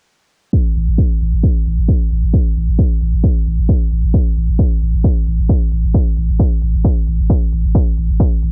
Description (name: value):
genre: driving peak-time techno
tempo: 133 BPM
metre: 4/4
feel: straight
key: unclear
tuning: A4 = 440 Hz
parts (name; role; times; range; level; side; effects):
- electronic hi-hat; drums; 0.5-8.5 s; none; -64 LUFS; equal; sidechain pumping on hats, cassette tape
- electronic kick drum; drums; 0.5-8.3 s; none; -16 LUFS; equal; overdrive, cassette tape
- saturated sub bass; bass; 0.8-8.5 s; A1; -18 LUFS; equal; overdrive, sidechain pumping, low-pass filter
room: little or no reverb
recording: home recording on cassette, low-pass filter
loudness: -15 LUFS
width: mono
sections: 0.5-8.5 A section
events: none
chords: none